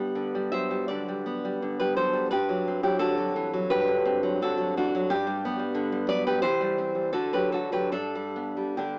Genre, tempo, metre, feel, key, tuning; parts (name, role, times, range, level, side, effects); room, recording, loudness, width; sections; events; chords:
romantic piece for solo classical guitar; 72-91 BPM; 4/4; rubato; G major; A4 = 438 Hz
nylon-string guitar; solo; 0.0-9.0 s; G2 to E5; -27 LUFS; equal; cassette tape
moderate lush hall reverb, RT60 2.4 s; home recording on cassette, small speaker sound; -27 LUFS; mono
0.0-9.0 A section
0.0 G; 6.5 C/E; 7.2 D; 8.0 G